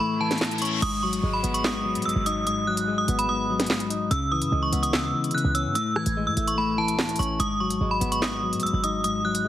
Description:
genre	hip hop, drill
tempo	146 BPM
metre	4/4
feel	half-time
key	G# phrygian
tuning	A4 = 438 Hz
part	metallic FM bell	melody	0.0-9.5 s	A5 to G#6	-26 LUFS	right 2 dB	chorus, low-pass filter, tape echo
part	clean electric guitar	accompaniment	0.0-9.5 s	G#2 to D#4	-27 LUFS	left 4 dB	spring reverb, low-pass filter
part	reverse cymbal and downlifter	sound effects	0.2-4.1 s	none	-37 LUFS	left 2 dB	none
part	drill drum kit	drums	0.3-9.4 s	crash cymbal, handclaps, hi-hat, rim click, snare drum	-28 LUFS	right 1 dB	none
part	short 808-style bass	bass	0.8-9.5 s	G#1 to B2	-30 LUFS	right 1 dB	none
room	digital ambience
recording	heavily compressed radio sound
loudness	-22 LUFS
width	side -12 dB against mid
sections	0.8-9.5 A section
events	break 0.0-0.8; reverse cymbal 0.2-0.8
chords	0.0 A; 0.8 G#m7; 4.1 C#m7; 5.8 Amaj7; 7.4 G#m7

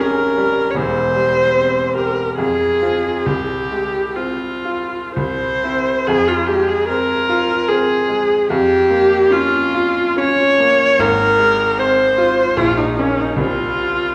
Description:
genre	classical, romantic duo for viola and grand piano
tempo	57-79 BPM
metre	3/4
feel	rubato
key	F minor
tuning	A4 = 440 Hz
part	warm viola	melody	0.0-14.1 s	Db4 to Db5	-18 LUFS	equal	none
part	bright grand piano	accompaniment	0.0-14.1 s	E1 to G4	-22 LUFS	equal	none
room	wet recital hall reverb, RT60 1.5 s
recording	heard from further back in the room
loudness	-16 LUFS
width	mono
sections	0.0-6.1 A section; 6.1-14.1 B section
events	none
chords	0.0 Gm7b5/F; 0.8 C/E; 2.4 Fm; 3.3 Fm/C; 5.2 C; 6.1 Fm; 8.5 Bbm/F; 11.0 Fm/Ab; 12.6 Bbmadd11; 13.4 C5

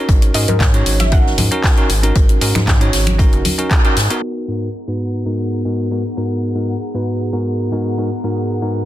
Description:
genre	deep house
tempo	116 BPM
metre	4/4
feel	straight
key	G# minor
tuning	A4 = 440 Hz
part	soft round pluck	melody	0.0-3.7 s	A#4 to F#5	-25 LUFS	left 1 dB	analog chorus, ping-pong delay
part	bell-like tine electric piano	stabs	0.0-8.8 s	G#2 to C#5	-19 LUFS	equal	vintage 12-bit sampler grit, sidechain pumping, dub echo
part	rubbery square bass	bass	0.1-4.1 s	F#1 to G#2	-17 LUFS	equal	tube saturation, sidechain pumping
part	electronic kick drum	drums	0.1-3.8 s	none	-14 LUFS	equal	none
part	soft-mallet drum kit	drums	0.1-4.1 s	hi-hat, snare drum	-28 LUFS	left 3 dB	sidechain pumping on hats, high-pass filter on hats, high-pass filter on snare, high-pass filter on room
part	deep house drum kit	drums	0.2-4.2 s	finger snaps, handclaps, hi-hat	-20 LUFS	equal	none
part	congas	percussion	0.5-3.6 s	none	-24 LUFS	left 1 dB	none
part	airy breathy pad	sustained chords	4.7-8.9 s	B3 to A#5	-28 LUFS	right 1 dB	chorus, sidechain pumping
room	light reverb, small room ambience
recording	dense, heavily limited modern master, low-pass filter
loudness	-14 LUFS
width	side -14 dB against mid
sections	0.0-4.2 A section; 4.2-8.9 B section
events	band accent 3.7; filter sweep on analog synth pad 4.2-8.9; filter sweep 4.2-8.9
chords	0.0 D#m7; 4.2 G#m9

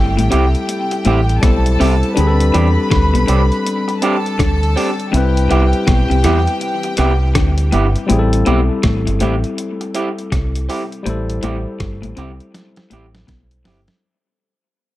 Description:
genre	lovers rock reggae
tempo	81 BPM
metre	4/4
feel	swing 62% on 16ths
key	A minor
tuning	A4 = 440 Hz
part	warm studio string section	second line	0.0-8.1 s	G4 to B5	-22 LUFS	left 1 dB	none
part	barky tine electric piano	accompaniment	0.0-14.0 s	G3 to C5	-21 LUFS	left 3 dB	overdrive, dub echo
part	electric guitar through a small old amp	riff	0.0-13.8 s	G2 to E3	-24 LUFS	left 4 dB	dub echo
part	deep dub fingered electric bass	bass	0.0-13.9 s	G1 to E2	-16 LUFS	equal	none
part	detuned 8-bit digital drum machine	drums	0.2-14.0 s	hi-hat, kick drum, rim click, snare drum	-20 LUFS	equal	none
part	electric guitar through a small old amp	stabs	0.3-13.8 s	B3 to G4	-21 LUFS	right 3 dB	none
room	light reverb, digital ambience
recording	none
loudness	-13 LUFS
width	side -15 dB against mid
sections	0.0-8.1 A section; 8.1-14.0 B section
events	fade-out 8.1-14.0; drum fill 12.5-14.0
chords	0.0 Am7; 2.2 D7sus4; 5.1 Cmaj7; 8.1 Am7

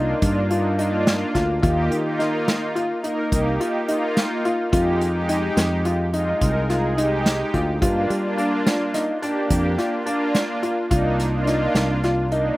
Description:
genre	progressive instrumental, band music in an uneven meter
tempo	213 BPM (eighths)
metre	11/8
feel	straight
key	F dorian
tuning	A4 = 439 Hz
part	lush unison pad	accompaniment	0.0-12.5 s	Ab3 to Bb4	-24 LUFS	right 1 dB	chorus, slapback echo
part	warm grand piano	arpeggios	0.0-12.6 s	D4 to F4	-24 LUFS	left 1 dB	slapback echo
part	sustaining fretless electric bass	bass	0.0-12.5 s	C2 to G3	-24 LUFS	equal	none
part	unplugged drum kit	drums	0.2-12.4 s	hi-hat, kick drum, snare drum	-23 LUFS	equal	none
room	little or no reverb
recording	recorded outdoors, with no room sound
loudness	-19 LUFS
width	side -18 dB against mid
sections	0.0-12.6 A section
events	none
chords	0.0 Cm7 (rootless); 1.6 Eb; 4.7 Fm7; 7.8 Gm7; 10.9 Cm7

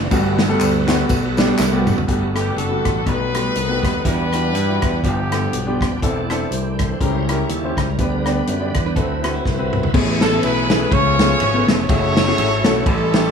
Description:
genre	uptempo gospel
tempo	122 BPM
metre	4/4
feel	swing 56% on 8ths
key	G major, A major from 9.9 s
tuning	A4 = 440 Hz
part	warm grand piano	accompaniment	0.0-13.3 s	G2 to D5	-22 LUFS	left 3 dB	none
part	bright tonewheel organ	sustained chords	0.0-13.3 s	E3 to F#5	-25 LUFS	right 4 dB	fast rotary speaker, overdrive, chorus vibrato
part	modern bright fingered electric bass	bass	0.0-13.3 s	Eb1 to G2	-22 LUFS	equal	none
part	warm soul drum kit	drums	0.1-13.2 s	crash cymbal, hi-hat, kick drum, ride cymbal, rim click, snare drum, toms	-20 LUFS	equal	none
part	tambourine and handclaps	percussion	0.1-2.0 s	none	-30 LUFS	left 3 dB	none
part	direct-recorded clean electric guitar	second line	1.5-2.1, 8.9-9.9 s	F#3 to B4	-26 LUFS	right 10 dB	none
part	dark French horn section	sustained chords	2.1-9.9 s	F#3 to B4	-33 LUFS	left 1 dB	none
part	clear horn section	melody	2.4-6.0, 10.2-13.3 s	B3 to C#5	-20 LUFS	equal	slapback echo
room	moderate large studio reverb, RT60 0.9 s, small room ambience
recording	studio ambience, faint mains hum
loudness	-16 LUFS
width	side -6 dB against mid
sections	0.0-2.1 A section; 2.1-9.9 B section; 9.9-13.3 A section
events	drum fill 1.6-2.1, 9.5-9.9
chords	0.1 Gmaj9; 3.1 B7b13; 4.1 Em9; 5.0 G7; 6.0 C69/E; 7.0 C#dim7; 8.0 G/D; 9.0 D13; 9.9 Amaj9; 10.9 C#7b13; 11.9 F#m9

